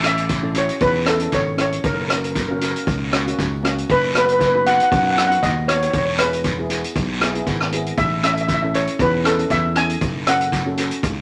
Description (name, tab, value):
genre	calypso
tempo	118 BPM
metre	4/4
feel	swing 54% on 16ths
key	A major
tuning	A4 = 441 Hz
part	steel pan	melody	0.0-11.2 s	A4 to G#5	-22 LUFS	equal	none
part	steel pan	accompaniment	0.0-11.1 s	A#3 to B4	-29 LUFS	equal	none
part	modern bright fingered electric bass	bass	0.0-11.2 s	E1 to F#2	-28 LUFS	equal	none
part	street-band drum kit	drums	0.0-11.2 s	hi-hat, kick drum, rim click	-25 LUFS	equal	none
part	guiro	percussion	0.3-11.2 s	none	-32 LUFS	equal	none
room	moderate studio reverb, RT60 0.7 s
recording	none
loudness	-19 LUFS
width	mono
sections	0.0-11.2 A section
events	none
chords	0.0 A; 1.8 F#; 3.9 B/F#; 5.9 E; 8.0 A; 10.0 F#madd9